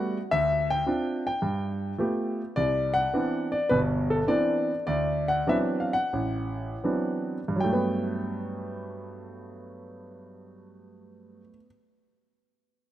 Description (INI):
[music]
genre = solo jazz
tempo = 75-111 BPM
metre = 4/4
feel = swing 69% on 8ths, rubato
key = G major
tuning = A4 = 443 Hz
[part]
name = clear concert grand piano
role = solo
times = 0.0-11.6 s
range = G1 to G5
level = -25 LUFS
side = equal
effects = none
[sound]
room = moderate plate reverb, RT60 2.9 s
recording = rough home demo mix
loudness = -25 LUFS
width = side -12 dB against mid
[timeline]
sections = 0.0-2.6 A section; 2.6-7.6 B section; 7.6-10.7 C section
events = slowing down 2.6-7.6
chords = 0.3 Dm7; 1.4 G9; 2.6 Cmaj9; 4.9 D13; 7.6 Gmaj9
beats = | 0.31 0.86 1.42 1.99 | 2.56 3.13 3.70 4.28 | 4.87 5.48 6.12 6.83 | 7.60 8.39 9.16 9.93